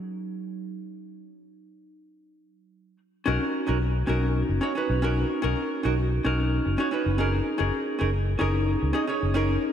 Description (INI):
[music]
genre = sunset chillout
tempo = 111 BPM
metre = 4/4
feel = straight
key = unclear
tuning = A4 = 440 Hz
[part]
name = vintage hollow-body jazz guitar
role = accompaniment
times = 0.0-9.7 s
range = F#3 to D#5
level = -26 LUFS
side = equal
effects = auto-pan, tape echo
[part]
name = fingered electric bass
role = bass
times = 3.3-9.6 s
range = F#1 to C#2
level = -25 LUFS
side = left 1 dB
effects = none
[sound]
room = wet lush hall reverb, RT60 3.0 s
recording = dreamy mix soaked in reverb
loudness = -23 LUFS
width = side -9 dB against mid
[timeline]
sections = 0.0-3.3 A section; 3.3-9.7 B section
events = none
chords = 0.0 F#69; 3.3 Bmaj9; 7.3 F#69